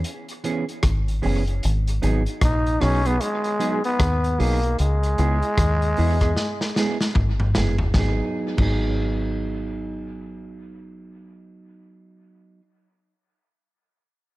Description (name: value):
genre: roots reggae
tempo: 76 BPM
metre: 4/4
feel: swing 62% on 16ths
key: G# minor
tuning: A4 = 441 Hz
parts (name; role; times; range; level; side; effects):
- deep dub fingered electric bass; bass; 0.0-12.6 s; F#1 to E2; -22 LUFS; equal; none
- crunchy breakbeat drum kit; drums; 0.0-8.8 s; crash cymbal, hi-hat, kick drum, rim click, snare drum, toms; -25 LUFS; equal; dub echo
- mellow electric guitar; accompaniment; 0.4-12.6 s; E3 to G#4; -28 LUFS; right 3 dB; tape echo
- growling trombone; melody; 2.4-7.1 s; G#3 to D#4; -24 LUFS; equal; tape echo
room: light reverb, small room reverb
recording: echo-heavy mix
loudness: -20 LUFS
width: side -18 dB against mid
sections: 0.0-7.9 A section; 7.9-11.1 B section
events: drum fill 6.4-7.9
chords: 0.0 C#m7; 1.6 G#m7; 4.8 C#m7; 7.9 G#m7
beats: 0.05 0.84 | 1.63 2.42 3.21 4.00 | 4.79 5.58 6.37 7.16 | 7.95 8.74 9.53 10.32